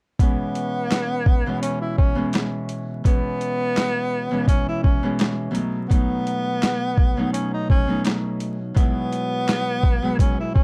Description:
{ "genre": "hip hop, boom-bap hip-hop", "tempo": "84 BPM", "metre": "4/4", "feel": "swing 55% on 16ths", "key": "C# minor", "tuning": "A4 = 440 Hz", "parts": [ { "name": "breathy tenor saxophone", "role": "melody", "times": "0.2-10.6 s", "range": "B3 to E4", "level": "-28 LUFS", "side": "equal", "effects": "tape echo" }, { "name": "Celtic harp", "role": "accompaniment", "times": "0.2-10.6 s", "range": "B2 to E4", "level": "-28 LUFS", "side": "equal", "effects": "cassette tape" }, { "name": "boom bap sampler-style drum kit", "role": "drums", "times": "0.2-10.6 s", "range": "handclaps, hi-hat, kick drum, snare drum", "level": "-22 LUFS", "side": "equal", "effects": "none" } ], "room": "light reverb", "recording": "dark, warm production, vinyl crackle", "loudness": "-22 LUFS", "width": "mono", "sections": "0.2-10.6 A section", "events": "none", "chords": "0.2 C#m7; 5.6 B7; 8.8 Eadd9", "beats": "| 0.19 0.91 1.62 2.34 | 3.05 3.77 4.48 5.19 | 5.91 6.62 7.34 8.05 | 8.77 9.48 10.19" }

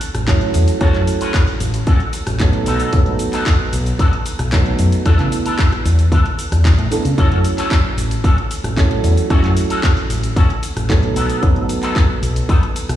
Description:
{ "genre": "nu-disco, nu disco", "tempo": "113 BPM", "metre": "4/4", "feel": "straight", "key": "A major", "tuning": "A4 = 438 Hz", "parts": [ { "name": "dark baby grand piano", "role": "accompaniment", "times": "0.0-13.0 s", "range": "E3 to A4", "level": "-22 LUFS", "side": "right 4 dB", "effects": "sidechain pumping, low-pass filter, tape echo" }, { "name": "electric guitar with an envelope filter", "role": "riff", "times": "0.0-12.8 s", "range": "B3 to B4", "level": "-25 LUFS", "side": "left 2 dB", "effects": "ensemble chorus, low-pass filter, tape echo" }, { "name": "house drum kit", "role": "drums", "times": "0.0-13.0 s", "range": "handclaps, hi-hat, rim click, shaker", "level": "-26 LUFS", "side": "equal", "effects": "none" }, { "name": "fingered electric bass with an envelope filter", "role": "bass", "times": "0.1-13.0 s", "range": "F#1 to C#3", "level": "-17 LUFS", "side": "equal", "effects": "tube saturation" }, { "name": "electronic kick drum", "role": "drums", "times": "0.3-12.6 s", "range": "none", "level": "-15 LUFS", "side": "equal", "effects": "none" } ], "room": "light reverb, digital ambience", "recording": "played on a big sound system in a bare room, stone room reverb, small room ambience", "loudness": "-13 LUFS", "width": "side -12 dB against mid", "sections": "0.0-13.0 A section", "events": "none", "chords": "0.0 A6; 2.7 B7; 5.1 E7sus4; 7.2 A6; 11.2 B7", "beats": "0.28 | 0.81 1.34 1.87 2.40 | 2.93 3.46 4.00 4.53 | 5.06 5.59 6.12 6.65 | 7.18 7.71 8.24 8.77 | 9.30 9.84 10.37 10.90 | 11.43 11.96 12.49" }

